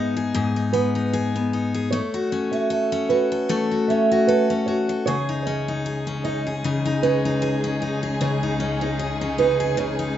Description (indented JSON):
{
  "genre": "acoustic pop",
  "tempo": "76 BPM",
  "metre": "4/4",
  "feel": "swing 55% on 16ths",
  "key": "unclear",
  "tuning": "A4 = 441 Hz",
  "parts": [
    { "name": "picked steel-string acoustic guitar", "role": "accompaniment", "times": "0.0-10.2 s", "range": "G#2 to A4", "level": "-22 LUFS", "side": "left 3 dB", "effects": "none" },
    { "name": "nylon-string guitar", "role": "arpeggios", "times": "0.0-10.2 s", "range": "B4 to E5", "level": "-24 LUFS", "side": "right 7 dB", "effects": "none" },
    { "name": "warm symphonic string section", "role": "sustained chords", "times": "5.1-10.2 s", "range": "C#2 to G#4", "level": "-29 LUFS", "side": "right 1 dB", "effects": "none" }
  ],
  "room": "light reverb, small room ambience",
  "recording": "rough home demo mix, nothing above 7.8 kHz",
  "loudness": "-20 LUFS",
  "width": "side -11 dB against mid",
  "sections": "0.0-10.2 A section",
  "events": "none",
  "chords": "0.0 G#m; 1.9 F#m; 5.1 C#sus2"
}